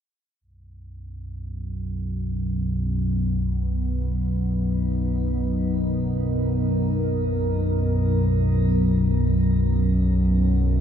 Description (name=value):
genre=dark ambient drone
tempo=free time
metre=none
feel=none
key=B major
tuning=A4 = 439 Hz
part: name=deep dark ambient pad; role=sustained chords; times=2.5-10.8 s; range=D3 to A#4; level=-29 LUFS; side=right 1 dB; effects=chorus, built-in reverb, shimmer reverb
part: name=analog drone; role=drone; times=0.9-10.8 s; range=B1 to F#2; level=-21 LUFS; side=equal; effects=chorus
room=moderate huge ambient reverb, RT60 8.2 s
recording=none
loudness=-21 LUFS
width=side -9 dB against mid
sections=0.4-10.8 A section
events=fade-in on ambient pad 0.4-10.8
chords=0.4 B; 9.8 D6